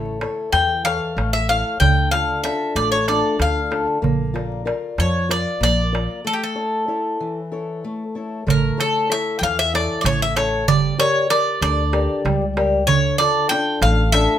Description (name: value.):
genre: greek folk, Greek bouzouki band.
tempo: 190 BPM (eighths).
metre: 7/8.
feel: straight.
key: A phrygian dominant.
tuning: A4 = 441 Hz.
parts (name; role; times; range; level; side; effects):
fingerpicked acoustic archtop guitar; accompaniment; 0.0-14.4 s; D3 to D5; -23 LUFS; left 3 dB; none.
upright bass; bass; 0.0-14.3 s; G1 to F2; -22 LUFS; equal; none.
darbuka; percussion; 0.1-14.4 s; none; -23 LUFS; right 6 dB; none.
Greek bouzouki; melody; 0.5-14.4 s; G4 to G5; -20 LUFS; equal; none.
room: moderate studio reverb, RT60 0.6 s.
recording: minimal, uncompressed stereo recording.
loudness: -17 LUFS.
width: side -10 dB against mid.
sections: 0.0-8.5 A section; 8.5-14.4 B section.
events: break 6.3-8.5.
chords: 0.0 A; 1.8 Dm; 4.0 Bb; 6.3 A; 10.7 Gm; 12.9 Dm.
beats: 0.21 0.54 0.85 1.17 1.49 | 1.81 2.13 2.45 2.77 3.09 3.41 3.73 | 4.04 4.36 4.68 5.00 5.31 5.63 5.95 | 6.26 6.58 6.90 7.21 7.53 7.85 8.16 | 8.48 8.79 9.11 9.43 9.74 10.05 10.37 | 10.69 11.00 11.31 11.63 11.94 12.26 12.57 | 12.88 13.20 13.51 13.82 14.14.